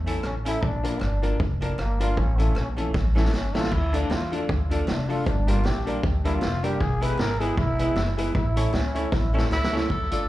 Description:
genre	ska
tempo	155 BPM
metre	4/4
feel	swing 56% on 8ths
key	unclear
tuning	A4 = 440 Hz
part	upright bass	bass	0.0-10.3 s	E1 to E2	-25 LUFS	equal	none
part	archtop guitar, miked and amplified	accompaniment	0.1-10.3 s	E3 to F4	-33 LUFS	right 5 dB	plate reverb, slapback echo
part	warm upright piano	stabs	0.1-10.2 s	C#4 to D5	-32 LUFS	left 5 dB	plate reverb, slapback echo
part	street-band drum kit	drums	0.1-10.2 s	crash cymbal, hi-hat, kick drum, rim click, snare drum	-28 LUFS	equal	tape echo
part	group handclap	percussion	0.2-9.6 s	none	-49 LUFS	right 2 dB	none
part	growling trombone	melody	0.3-9.3 s	A3 to B4	-31 LUFS	equal	tape echo, plate reverb, slapback echo
part	clear tenor saxophone	melody	9.5-10.3 s	E4 to A4	-27 LUFS	equal	tape echo
room	little or no reverb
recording	live gig heard through the venue's PA, club reverb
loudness	-22 LUFS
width	side -15 dB against mid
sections	0.0-9.9 A section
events	trombone solo 0.0-9.9; drum fill 2.9-3.7, 9.1-9.9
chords	0.0 A; 0.6 Bb; 2.2 A; 3.7 Dm; 5.3 Gm; 6.8 E; 8.4 A

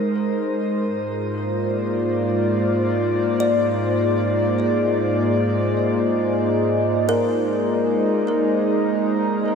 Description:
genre	ambient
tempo	free time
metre	none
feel	none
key	Ab lydian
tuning	A4 = 440 Hz
part	airy breathy pad	sustained chords	0.0-9.6 s	Ab2 to D5	-20 LUFS	equal	chorus, shimmer reverb
part	analog drone	drone	0.0-9.6 s	Ab3 to Eb4	-25 LUFS	equal	chorus, phaser
part	kalimba	arpeggios	3.4-7.5 s	Bb4 to D5	-27 LUFS	left 1 dB	tape echo, shimmer reverb
room	wet huge ambient reverb, RT60 7.6 s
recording	none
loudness	-18 LUFS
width	side -6 dB against mid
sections	0.0-9.6 A section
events	none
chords	0.0 Abadd9

